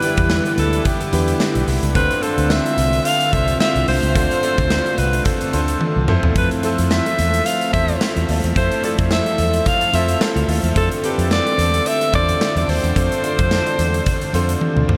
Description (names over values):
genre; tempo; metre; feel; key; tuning
1980s-style pop; 109 BPM; 4/4; swing 55% on 16ths; unclear; A4 = 441 Hz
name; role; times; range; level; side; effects
bright alto saxophone; melody; 0.0-14.6 s; G4 to F5; -23 LUFS; equal; tape echo
clear concert grand piano; accompaniment; 0.0-15.0 s; D3 to D5; -27 LUFS; equal; none
cranked stack guitar; accompaniment; 0.0-15.0 s; D3 to F4; -36 LUFS; equal; none
chorused pulse-width pad; sustained chords; 0.0-15.0 s; D3 to A4; -28 LUFS; equal; none
big rock drum kit; drums; 0.0-15.0 s; hi-hat, kick drum, snare drum, tambourine, toms; -24 LUFS; equal; none
vintage muted fingered electric bass; bass; 0.2-15.0 s; B1 to F2; -22 LUFS; equal; none
room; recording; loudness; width
wet huge ambient reverb, RT60 7.8 s; dreamy mix soaked in reverb; -18 LUFS; mono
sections
0.0-15.0 A section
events
drum fill 5.8-6.4, 14.6-15.0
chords
0.0 Em7; 2.0 Dm7; 6.1 Fmaj7; 10.8 Dm7